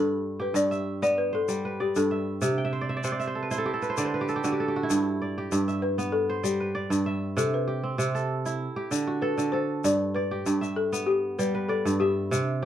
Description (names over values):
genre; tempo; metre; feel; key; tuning
west african traditional, West African string and xylophone music; 97 BPM; 4/4; straight; G major; A4 = 440 Hz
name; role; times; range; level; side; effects
balafon; melody; 0.0-12.7 s; G4 to D5; -27 LUFS; left 3 dB; none
kora; arpeggios; 0.0-12.7 s; G2 to G5; -26 LUFS; right 2 dB; none
tube shaker; percussion; 0.6-12.5 s; none; -38 LUFS; left 11 dB; none
room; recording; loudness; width
moderate studio ambience, RT60 0.5 s; dark, warm production; -25 LUFS; side -10 dB against mid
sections
0.0-4.9 A section; 4.9-12.7 B section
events
kora fill 2.6-4.9; balafon solo 4.9-12.7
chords
0.0 G; 2.4 C; 3.7 N.C.; 4.9 G; 7.4 C; 8.6 D; 9.8 G